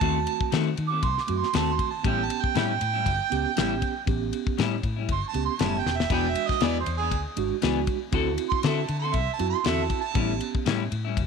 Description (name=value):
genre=straight-eighth soul blues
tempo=118 BPM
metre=4/4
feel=swing 55% on 16ths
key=unclear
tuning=A4 = 440 Hz
part: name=warm harmonica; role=second line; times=0.0-10.5 s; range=G#4 to D6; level=-28 LUFS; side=right 11 dB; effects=overdrive, slapback echo
part: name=mellow tine electric piano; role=accompaniment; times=0.0-10.9 s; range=G#3 to G4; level=-31 LUFS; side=right 16 dB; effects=medium stereo tremolo
part: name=clean electric guitar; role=stabs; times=0.0-11.2 s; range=A2 to A4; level=-30 LUFS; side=left 14 dB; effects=wide subtle chorus
part: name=vintage muted fingered electric bass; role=bass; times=0.0-11.3 s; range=E1 to D#3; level=-30 LUFS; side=left 1 dB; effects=none
part: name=damped 70s drum kit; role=drums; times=0.0-11.3 s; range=crash cymbal, kick drum, ride cymbal, snare drum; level=-30 LUFS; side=left 4 dB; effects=none
room=light reverb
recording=1960s-style stereo with parts hard left and right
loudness=-23 LUFS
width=side -5 dB against mid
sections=0.0-11.3 A section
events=harmonica solo 0.0-11.3; drum fill 5.8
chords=0.0 D#dim7; 2.0 A7; 6.1 E7; 8.1 D7; 10.2 A7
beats=| 0.02 0.52 1.03 1.54 | 2.05 2.55 3.06 3.57 | 4.07 4.58 5.09 5.59 | 6.10 6.61 7.12 7.62 | 8.13 8.64 9.14 9.65 | 10.16 10.66 11.17